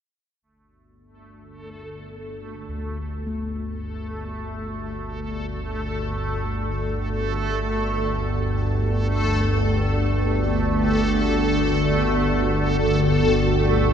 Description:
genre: dark ambient drone.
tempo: free time.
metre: none.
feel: none.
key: unclear.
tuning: A4 = 440 Hz.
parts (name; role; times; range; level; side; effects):
organ-like drone; drone; 1.6-13.9 s; G1 to D2; -22 LUFS; equal; ensemble chorus, built-in reverb.
backwards swelling texture; texture; 1.5-13.9 s; A3 to A4; -26 LUFS; equal; built-in reverb, shimmer reverb.
gamelan-type bossed gongs; arpeggios; 2.7-10.7 s; D2 to A3; -35 LUFS; left 2 dB; ping-pong delay.
room: wet huge ambient reverb, RT60 7.0 s.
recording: in a vast, echoing space.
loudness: -20 LUFS.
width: side -8 dB against mid.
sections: 0.4-13.9 A section.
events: fade-in on synth drone 0.4-13.9; fade-in on synth texture 0.4-13.9; fade-in on kettle gongs 0.4-13.9.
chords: 0.4 G5.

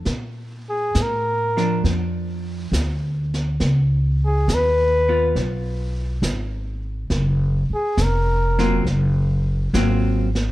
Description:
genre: jazz ballad.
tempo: 68 BPM.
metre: 4/4.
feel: swing 69% on 8ths.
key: unclear.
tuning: A4 = 440 Hz.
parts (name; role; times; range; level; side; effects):
vintage hollow-body jazz guitar; accompaniment; 0.0-10.3 s; F3 to F4; -24 LUFS; equal; none.
upright bass; bass; 0.0-10.5 s; F1 to Bb2; -21 LUFS; equal; none.
vintage brush drum kit; drums; 0.1-10.5 s; brushed snare drum, hi-hat, snare drum; -30 LUFS; right 1 dB; none.
warm flugelhorn; melody; 0.7-8.9 s; Ab4 to Cb5; -21 LUFS; left 1 dB; none.
room: little or no reverb.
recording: dark, warm production.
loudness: -18 LUFS.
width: side -16 dB against mid.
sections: 0.1-10.5 A section.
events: flugelhorn solo 0.1-10.5.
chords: 0.1 Bbmaj7; 3.6 Db9; 7.1 Gbmaj9#11.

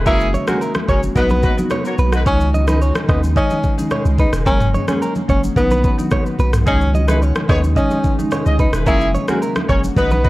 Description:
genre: afrobeats.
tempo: 109 BPM.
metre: 4/4.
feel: straight.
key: unclear.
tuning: A4 = 440 Hz.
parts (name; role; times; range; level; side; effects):
warm horn section; second line; 0.0-2.2, 6.7-10.3 s; A#3 to D#5; -25 LUFS; left 1 dB; none.
granular cloud pad; sustained chords; 0.0-10.3 s; C#3 to G#4; -29 LUFS; right 1 dB; built-in reverb, sidechain pumping.
punchy sub bass; bass; 0.0-10.3 s; E1 to D#2; -17 LUFS; equal; none.
breathy tenor saxophone; melody; 0.1-10.3 s; B3 to F#4; -22 LUFS; equal; digital delay.
marimba with medium mallets; accompaniment; 0.1-10.2 s; D#3 to F#4; -22 LUFS; left 1 dB; none.
direct-recorded clean electric guitar; riff; 0.1-10.3 s; G#4 to D#5; -25 LUFS; right 3 dB; digital delay.
afro-pop drum kit; drums; 0.1-10.3 s; kick drum, rim click, shaker, toms; -19 LUFS; equal; none.
congas; percussion; 0.3-10.2 s; none; -27 LUFS; right 1 dB; none.
room: studio reverb.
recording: worn, warbling old tape, cassette tape, warbly pitch drift.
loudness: -14 LUFS.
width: side -18 dB against mid.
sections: 0.0-10.3 A section.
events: none.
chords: 0.1 F#add9; 1.2 B; 2.3 C#sus2; 4.5 F#add9; 5.6 B; 6.7 C#sus2; 8.9 F#add9.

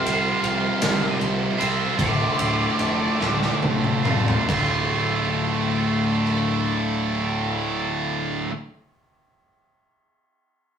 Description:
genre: quiet-loud alternative rock.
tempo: 45-53 BPM (dotted quarters).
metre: 6/8.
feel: straight.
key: D minor.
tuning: A4 = 439 Hz.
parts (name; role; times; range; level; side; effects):
octave-fuzz lead guitar; melody; 0.0-3.6 s; D5 to F5; -29 LUFS; left 2 dB; distortion.
tonewheel organ; sustained chords; 0.0-7.9 s; C3 to F5; -32 LUFS; left 2 dB; slow rotary speaker.
fuzz guitar; riff; 0.0-8.5 s; D2 to C4; -29 LUFS; left 6 dB; distortion.
tight distorted guitar; riff; 0.0-8.5 s; D2 to C5; -24 LUFS; right 5 dB; distortion.
growling picked electric bass; bass; 0.1-8.5 s; D1 to C2; -30 LUFS; equal; overdrive.
big rock drum kit; drums; 0.1-6.5 s; crash cymbal, kick drum, ride cymbal, rim click, snare drum, toms; -25 LUFS; left 1 dB; none.
room: moderate studio reverb, RT60 0.5 s.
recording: rough rehearsal-room recording, studio reverb.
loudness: -20 LUFS.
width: side -8 dB against mid.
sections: 0.0-4.5 A section; 4.5-7.1 B section.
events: slowing down 0.0-4.5; drum fill 3.2-4.5.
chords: 0.0 Csus4; 2.0 Dm.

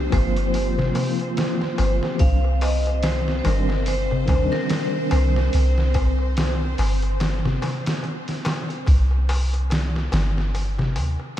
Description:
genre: trip hop.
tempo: 72 BPM.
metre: 4/4.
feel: swing 58% on 16ths.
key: C minor.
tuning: A4 = 436 Hz.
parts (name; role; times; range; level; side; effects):
vibraphone with medium hard mallets; melody; 0.0-5.9 s; G4 to F5; -29 LUFS; right 1 dB; tape echo.
tine electric piano; accompaniment; 0.0-5.5 s; Eb3 to G4; -28 LUFS; equal; medium stereo tremolo, vintage 12-bit sampler grit, tape echo.
string machine, cellos; sustained chords; 0.0-8.9 s; C4 to C5; -31 LUFS; left 1 dB; ensemble chorus.
soft 808-style bass; bass; 0.0-11.2 s; G1 to Eb2; -21 LUFS; equal; none.
trip hop sampler-style drum kit; drums; 0.1-11.4 s; hi-hat, kick drum, snare drum; -26 LUFS; equal; vintage 12-bit sampler grit.
darbuka; percussion; 0.1-11.4 s; none; -31 LUFS; left 2 dB; none.
room: light reverb, digital ambience.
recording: none.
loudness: -19 LUFS.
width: side -12 dB against mid.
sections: 0.0-11.4 A section.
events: none.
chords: 0.0 Bbsus2; 2.2 Cmadd9; 8.9 Gsus4.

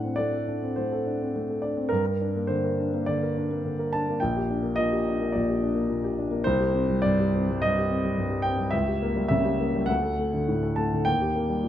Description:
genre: classical, romantic character piece for solo piano.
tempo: 105 BPM.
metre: 4/4.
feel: rubato.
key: G minor.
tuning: A4 = 439 Hz.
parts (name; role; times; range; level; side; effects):
warm grand piano; solo; 0.0-11.7 s; Bb1 to A5; -23 LUFS; equal; none.
room: moderate recital hall reverb, RT60 1.6 s.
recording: close, detailed microphones.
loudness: -23 LUFS.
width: side -11 dB against mid.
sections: 0.0-11.7 A section.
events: none.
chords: 0.0 D7/A; 1.9 Gm; 4.2 Gm/Bb; 6.4 Cm; 8.7 C#dim7; 9.9 D; 11.1 Eb.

